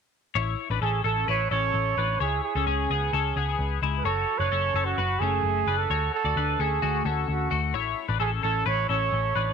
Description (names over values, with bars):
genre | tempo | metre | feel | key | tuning
indie pop | 130 BPM | 4/4 | straight | A major | A4 = 440 Hz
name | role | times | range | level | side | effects
twelve-string electric guitar | arpeggios | 0.4-9.5 s | G#3 to D5 | -28 LUFS | left 14 dB | analog chorus, slapback echo
vintage muted picked electric bass | bass | 0.4-9.5 s | F#1 to D2 | -28 LUFS | left 1 dB | none
breathy trumpet | melody | 0.8-9.5 s | F#4 to C#5 | -27 LUFS | right 10 dB | slapback echo
room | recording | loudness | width
light reverb, small room ambience | 1960s-style stereo with parts hard left and right | -23 LUFS | side -6 dB against mid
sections
0.4-9.5 A section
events
none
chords
0.4 A; 2.2 C#m; 4.0 F#madd9; 5.9 D; 7.7 A